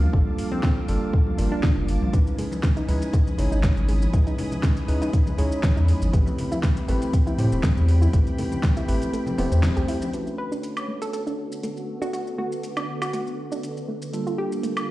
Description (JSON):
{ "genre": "deep house", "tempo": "120 BPM", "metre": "4/4", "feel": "swing 53% on 16ths", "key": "unclear", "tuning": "A4 = 440 Hz", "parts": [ { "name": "soft string machine", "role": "sustained chords", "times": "0.0-14.9 s", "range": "D3 to D#6", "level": "-36 LUFS", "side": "equal", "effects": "phaser, ensemble chorus, sidechain pumping" }, { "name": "bell-like tine electric piano", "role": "stabs", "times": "0.0-14.9 s", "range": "G3 to C#5", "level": "-29 LUFS", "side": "equal", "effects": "vintage 12-bit sampler grit, sidechain pumping, low-pass filter, tape echo" }, { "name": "round analog bass", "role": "bass", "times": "0.0-9.8 s", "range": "E1 to A2", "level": "-21 LUFS", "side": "equal", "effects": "tube saturation, sidechain pumping" }, { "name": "congas", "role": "percussion", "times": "0.0-10.1 s", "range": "none", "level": "-33 LUFS", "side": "left 3 dB", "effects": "none" }, { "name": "electronic kick drum", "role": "drums", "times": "0.1-8.7 s", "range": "none", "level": "-20 LUFS", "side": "equal", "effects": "small room reverb" }, { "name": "deep house drum kit", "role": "drums", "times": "0.4-14.9 s", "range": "hi-hat, shaker, snare drum, woodblock", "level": "-32 LUFS", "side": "equal", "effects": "small room reverb" }, { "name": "hollow square pluck", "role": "melody", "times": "0.5-1.9, 10.4-14.6 s", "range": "C4 to B4", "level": "-32 LUFS", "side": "equal", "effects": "chorus, tape echo" }, { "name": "soft round pluck", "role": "arpeggios", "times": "2.4-14.8 s", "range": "G#3 to G4", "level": "-34 LUFS", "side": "right 2 dB", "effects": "chorus, sidechain pumping, tape echo" } ], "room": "digital ambience", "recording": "played on a big sound system in a bare room, stone room reverb", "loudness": "-21 LUFS", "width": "side -17 dB against mid", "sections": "0.0-10.1 A section; 10.1-14.9 B section", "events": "kick drops out 9.1-10.1; filter sweep on string machine 10.1-14.9", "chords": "0.0 Gm9; 2.1 C#m9; 6.1 Am9; 10.1 Bm9; 14.1 Gm9" }